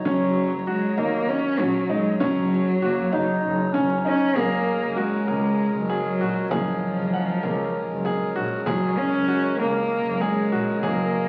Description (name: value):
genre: contemporary instrumental, chamber music in an uneven meter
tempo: 195 BPM (eighths)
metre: 7/8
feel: straight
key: F# major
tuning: A4 = 440 Hz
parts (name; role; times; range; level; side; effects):
- pedal harmonium; sustained chords; 0.0-11.3 s; F#3 to A#5; -32 LUFS; equal; none
- rich cello; melody; 0.1-11.3 s; E#3 to C#4; -27 LUFS; equal; none
- bright grand piano; arpeggios; 0.1-11.3 s; C#4 to F#5; -30 LUFS; equal; none
- clear double bass; bass; 0.1-11.1 s; F#1 to F#2; -31 LUFS; equal; none
- frame drum; percussion; 0.1-11.1 s; none; -36 LUFS; equal; none
- warm clarinet; second line; 2.8-4.4 s; A#3 to D#4; -30 LUFS; equal; none
room: wet recital hall reverb, RT60 1.8 s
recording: very old 78 rpm record, vinyl crackle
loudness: -23 LUFS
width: mono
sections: 0.0-4.4 A section; 4.4-11.3 B section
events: none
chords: 0.0 F#; 4.4 F#maj9